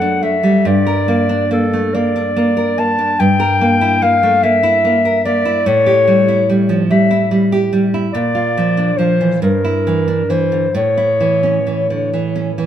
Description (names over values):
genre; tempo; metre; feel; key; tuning
romantic duo for clarinet and classical guitar; 43-50 BPM (dotted quarters); 6/8; rubato; unclear; A4 = 440 Hz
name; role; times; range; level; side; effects
mellow clarinet; melody; 0.0-12.1 s; A4 to A5; -15 LUFS; left 2 dB; tape echo
nylon-string guitar; accompaniment; 0.0-12.7 s; F#2 to Bb4; -15 LUFS; right 1 dB; none
room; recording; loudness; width
moderate studio reverb, RT60 0.8 s; band playing live in one room; -12 LUFS; side -10 dB against mid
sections
0.0-12.7 A section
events
none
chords
0.0 D/F#; 0.7 Gm; 3.2 Edim/G; 5.7 A7; 8.1 Bb; 9.4 Em7b5/G; 10.7 A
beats
| 0.65 1.95 | 3.20 4.44 | 5.66 6.90 | 8.13 9.42 | 10.75 12.13